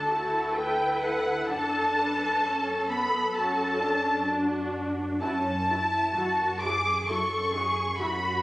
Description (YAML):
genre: classical, slow romantic movement for string orchestra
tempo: 64 BPM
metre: 4/4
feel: rubato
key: D major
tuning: A4 = 440 Hz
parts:
  - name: muted symphonic violin section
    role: melody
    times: 0.0-8.4 s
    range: F#5 to D6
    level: -28 LUFS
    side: left 1 dB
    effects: none
  - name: muted symphonic violin section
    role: second line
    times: 0.0-8.4 s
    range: F#5 to D6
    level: -31 LUFS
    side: equal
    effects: none
  - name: muted symphonic viola section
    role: accompaniment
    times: 0.0-8.1 s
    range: B3 to B4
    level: -32 LUFS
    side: equal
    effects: none
  - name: muted symphonic cello section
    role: bass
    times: 0.0-8.4 s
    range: C#4 to B4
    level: -32 LUFS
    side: equal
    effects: none
  - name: muted symphonic double bass section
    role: bass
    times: 0.0-8.4 s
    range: D2 to F#2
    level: -37 LUFS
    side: equal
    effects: none
room: moderate scoring stage reverb, RT60 1.6 s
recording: recorded on a phone in the room, studio reverb, compression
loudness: -24 LUFS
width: side -18 dB against mid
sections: 0.0-8.4 A section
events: none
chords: 0.0 D; 1.5 D/F#; 5.2 F#m7